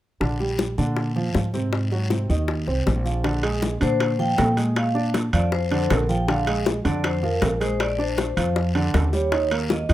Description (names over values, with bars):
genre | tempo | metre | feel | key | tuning
Afro-Cuban jazz | 158 BPM | 4/4 | straight | Bb mixolydian | A4 = 440 Hz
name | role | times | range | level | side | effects
dark baby grand piano | accompaniment | 0.2-9.9 s | C3 to D5 | -26 LUFS | right 2 dB | none
upright bass | bass | 0.2-9.9 s | Bb1 to Bb2 | -24 LUFS | equal | none
bongos | percussion | 0.2-9.9 s | none | -28 LUFS | left 5 dB | none
congas | percussion | 0.2-9.9 s | none | -32 LUFS | left 2 dB | none
guiro | percussion | 0.2-9.9 s | none | -38 LUFS | left 4 dB | none
timbales | percussion | 3.2-9.9 s | none | -30 LUFS | right 3 dB | none
vibraphone with medium hard mallets | melody | 3.8-9.9 s | Bb4 to G5 | -26 LUFS | left 2 dB | none
room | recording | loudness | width
light reverb | rough home demo mix | -20 LUFS | side -14 dB against mid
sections
0.2-3.2 A section; 3.2-9.9 B section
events
none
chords
0.2 Bb69; 1.7 Ab9; 3.2 Bb9; 9.3 Eb7(no3)